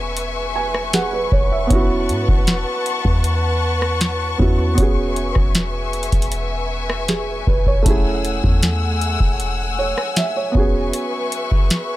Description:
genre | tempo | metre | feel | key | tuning
contemporary R&B | 78 BPM | 4/4 | straight | E major | A4 = 440 Hz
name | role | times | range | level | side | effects
felt-muted upright piano | accompaniment | 0.0-12.0 s | A3 to G#5 | -23 LUFS | right 3 dB | none
warm studio string section | sustained chords | 0.0-12.0 s | A3 to E6 | -24 LUFS | left 3 dB | sidechain pumping
clean 808-style bass | bass | 0.0-10.9 s | E1 to G#2 | -22 LUFS | equal | none
booming analog drum machine | drums | 0.2-11.9 s | hi-hat, kick drum, rim click, snare drum | -17 LUFS | equal | none
room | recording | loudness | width
little or no reverb | dry, gritty hardware recording, transformer saturation | -16 LUFS | side -16 dB against mid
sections
0.0-12.0 A section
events
felt piano fill 0.2-1.7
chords
0.0 E6; 1.7 A69/E; 4.8 E6; 7.9 F#m9/E; 10.6 E6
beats
0.17 0.94 | 1.70 2.47 3.24 4.01 | 4.78 5.55 6.32 7.09 | 7.86 8.63 9.40 10.17 | 10.94 11.70

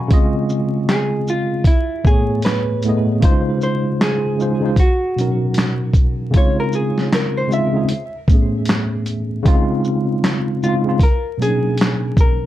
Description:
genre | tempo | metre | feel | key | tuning
lo-fi hip hop | 77 BPM | 4/4 | swing 60% on 16ths | Db major | A4 = 439 Hz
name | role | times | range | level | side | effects
tine electric piano | accompaniment | 0.0-12.5 s | A2 to Db6 | -18 LUFS | equal | overdrive, fast stereo tremolo
lo-fi sampler-style drum kit | drums | 0.1-12.4 s | handclaps, hi-hat, kick drum, shaker, snare drum | -15 LUFS | equal | none
vintage hollow-body jazz guitar | melody | 0.9-12.5 s | E4 to Fb5 | -23 LUFS | right 1 dB | tape echo
room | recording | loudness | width
moderate small room reverb, RT60 0.6 s | dark, warm production, vinyl crackle | -15 LUFS | side -13 dB against mid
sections
0.0-12.5 A section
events
none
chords
0.1 Dbmaj9; 1.7 Amaj9; 3.2 Dbmaj9; 4.8 Cbmaj9; 6.3 Dbmaj9; 7.9 Amaj9; 9.5 Dbmaj9; 11.0 Cbmaj9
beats
| 0.10 0.88 1.66 2.44 | 3.22 4.00 4.78 5.56 | 6.33 7.11 7.89 8.67 | 9.45 10.23 11.01 11.79

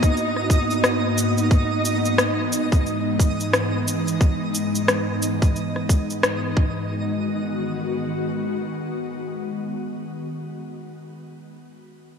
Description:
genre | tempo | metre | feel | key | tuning
organic downtempo | 89 BPM | 4/4 | swing 60% on 16ths | G# minor | A4 = 440 Hz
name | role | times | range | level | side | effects
ethereal airy pad | sustained chords | 0.0-10.1 s | G#2 to F#4 | -24 LUFS | equal | ensemble chorus, built-in reverb, sidechain pumping, shimmer reverb
electronic cabasa and rim click | drums | 0.0-6.4 s | none | -24 LUFS | left 1 dB | none
electronic kick drum | drums | 0.0-6.7 s | none | -17 LUFS | equal | none
twinkling granular texture | texture | 0.0-6.9 s | D#4 to D#5 | -29 LUFS | right 1 dB | built-in reverb, shimmer reverb
room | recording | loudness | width
moderate plate reverb, RT60 3.4 s | bright 1980s-style digital production | -20 LUFS | side -6 dB against mid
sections
0.0-6.9 A section; 6.9-9.6 B section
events
none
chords
0.0 Bmaj7/G#; 1.5 Emaj7/G#; 6.6 G#m7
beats
0.16 0.84 | 1.51 2.19 2.86 3.53 | 4.21 4.88 5.56 6.23 | 6.91 7.58 8.25 8.93

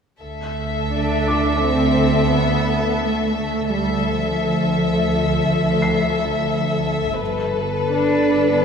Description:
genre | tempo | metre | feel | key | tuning
cinematic | 86 BPM | 5/4 | straight | D dorian | A4 = 438 Hz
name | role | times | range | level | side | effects
rich chamber violin section | second line | 0.2-8.6 s | A4 to E5 | -21 LUFS | left 4 dB | none
rich chamber double bass section | bass | 0.2-8.6 s | G1 to D2 | -23 LUFS | right 3 dB | none
rich chamber cello section | bass | 0.9-8.6 s | F3 to D4 | -21 LUFS | right 1 dB | none
felt-muted upright piano | texture | 1.3-8.6 s | D6 to C7 | -30 LUFS | right 1 dB | none
room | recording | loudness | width
wet scoring stage reverb, RT60 2.0 s | heard from further back in the room | -17 LUFS | side -6 dB against mid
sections
0.2-8.6 A section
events
none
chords
0.2 Dmadd9; 7.2 Gadd9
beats
| 0.20 0.91 1.61 2.31 3.02 | 3.71 4.42 5.11 5.81 6.50 | 7.20 7.90 8.60

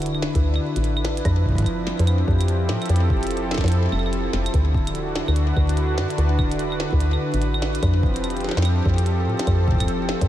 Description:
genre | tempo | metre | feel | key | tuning
IDM | 146 BPM | 4/4 | swing 62% on 16ths | unclear | A4 = 444 Hz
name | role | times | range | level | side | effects
warm analog pad | sustained chords | 0.0-10.3 s | D3 to B4 | -24 LUFS | equal | chorus
woody FM bass | bass | 0.0-10.3 s | D1 to A2 | -21 LUFS | equal | tube saturation
glitchy drum kit | drums | 0.0-10.3 s | claves, hi-hat, snare drum | -30 LUFS | right 1 dB | studio reverb, ping-pong delay
electronic kick drum | drums | 0.4-10.3 s | none | -23 LUFS | equal | studio reverb
room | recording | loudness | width
light reverb | none | -19 LUFS | side -12 dB against mid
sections
0.0-10.3 A section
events
none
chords
0.0 D6; 1.3 Fmaj9; 4.5 D6; 7.8 Fmaj9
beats
0.02 0.43 0.84 | 1.25 1.66 2.07 2.48 | 2.90 3.31 3.72 4.13 | 4.54 4.95 5.36 5.77 | 6.18 6.59 7.00 7.42 | 7.83 8.24 8.65 9.06 | 9.47 9.88

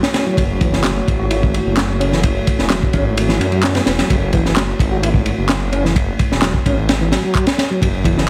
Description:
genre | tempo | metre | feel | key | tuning
breakbeat, breaks | 129 BPM | 4/4 | straight | F# minor | A4 = 445 Hz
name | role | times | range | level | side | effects
dark analog pad | sustained chords | 0.0-8.3 s | A3 to C#5 | -26 LUFS | equal | chorus, sidechain pumping
tonewheel organ | riff | 0.0-8.3 s | E3 to F#4 | -24 LUFS | equal | chorus vibrato, slow rotary speaker, tube saturation, dub echo
crunchy breakbeat drum kit | drums | 0.0-8.3 s | kick drum, ride cymbal, snare drum | -20 LUFS | equal | none
detuned saw bass | bass | 0.4-8.3 s | E1 to F#2 | -22 LUFS | equal | none
electronic handclaps | drums | 0.8-7.4 s | none | -27 LUFS | equal | overdrive
room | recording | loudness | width
light reverb, studio ambience | heavily compressed radio sound | -16 LUFS | mono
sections
0.0-8.3 A section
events
none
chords
0.0 F#m7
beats
| 0.38 0.84 1.31 1.77 | 2.24 2.70 3.17 3.63 | 4.10 4.56 5.03 5.49 | 5.96 6.42 6.89 7.35 | 7.82 8.28

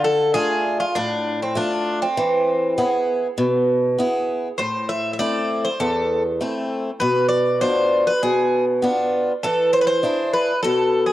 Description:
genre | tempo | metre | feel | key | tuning
greek folk, Greek bouzouki band | 99 BPM | 4/4 | straight | unclear | A4 = 444 Hz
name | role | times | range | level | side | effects
Greek bouzouki | melody | 0.0-11.1 s | C4 to E5 | -21 LUFS | equal | cassette tape
picked swing-style acoustic guitar | accompaniment | 0.0-11.1 s | E2 to G#4 | -20 LUFS | equal | cassette tape
room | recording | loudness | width
wet spring reverb, RT60 1.8 s, small room reverb | home recording on cassette | -18 LUFS | side -14 dB against mid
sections
0.0-11.1 A section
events
none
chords
0.0 Dm; 2.2 E; 4.6 Am; 7.0 Bdim; 9.4 E7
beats
0.36 0.96 1.57 | 2.17 2.78 3.38 3.99 | 4.59 5.20 5.80 6.41 | 7.01 7.62 8.22 8.82 | 9.43 10.03 10.64

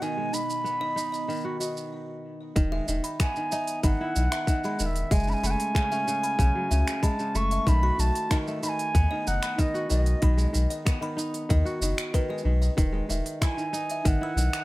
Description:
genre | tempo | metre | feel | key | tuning
folktronica | 94 BPM | 4/4 | straight | E major | A4 = 440 Hz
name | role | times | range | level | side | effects
mellow wooden flute | melody | 0.0-14.6 s | D#5 to C#6 | -30 LUFS | right 1 dB | tape echo
buzzing kalimba | second line | 0.0-14.4 s | B4 to E6 | -37 LUFS | left 1 dB | digital delay
warbly tape-like pad | sustained chords | 0.0-1.9 s | B2 to D#4 | -38 LUFS | right 5 dB | chorus, built-in reverb, phaser
kora | arpeggios | 0.0-14.6 s | C#3 to F#4 | -31 LUFS | equal | tape echo
organic electronic drum kit | drums | 0.0-14.6 s | finger snaps, hi-hat, shaker | -34 LUFS | right 2 dB | none
warm sub bass | bass | 2.6-14.5 s | E1 to D#2 | -25 LUFS | equal | none
electronic kick drum | drums | 2.6-14.2 s | none | -24 LUFS | equal | none
room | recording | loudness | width
light reverb | none | -24 LUFS | side -19 dB against mid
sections
0.0-2.6 A section; 2.6-14.6 B section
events
filter sweep on ambient pad 0.0-2.6; stop 1.9-2.6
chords
0.0 G#m7/B (rootless); 2.6 Emaj7; 5.1 F#m9; 7.7 B7; 10.2 G#m7/B; 12.8 Emaj7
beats
| 0.01 0.65 1.29 1.93 | 2.57 3.21 3.84 4.48 | 5.12 5.76 6.40 7.04 | 7.67 8.31 8.95 9.59 | 10.23 10.87 11.50 12.14 | 12.78 13.42 14.06

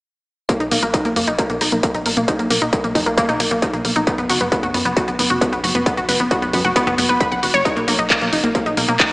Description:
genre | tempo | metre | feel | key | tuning
uplifting trance | 134 BPM | 4/4 | straight | B major | A4 = 438 Hz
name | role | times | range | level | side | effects
analog pluck | arpeggios | 0.5-9.1 s | A#3 to B5 | -18 LUFS | equal | chorus, sidechain pumping, analog delay
electronic kick drum | drums | 0.5-9.1 s | none | -22 LUFS | equal | distortion
punchy analog drum machine | drums | 0.5-9.1 s | handclaps, hi-hat | -21 LUFS | equal | sidechain pumping on hats
plucky analog bass | bass | 0.6-9.0 s | F#1 to F#2 | -25 LUFS | equal | sidechain pumping
room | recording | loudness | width
wet lush hall reverb, RT60 1.7 s, digital ambience | dreamy mix soaked in reverb, small speaker sound | -15 LUFS | side -24 dB against mid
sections
0.5-9.1 A section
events
none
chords
0.5 Bmaj7; 4.1 F#sus4; 7.7 Bmaj7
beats
| 0.49 0.94 1.39 1.83 | 2.28 2.73 3.18 3.62 | 4.07 4.52 4.97 5.42 | 5.86 6.31 6.76 7.21 | 7.65 8.10 8.55 9.00

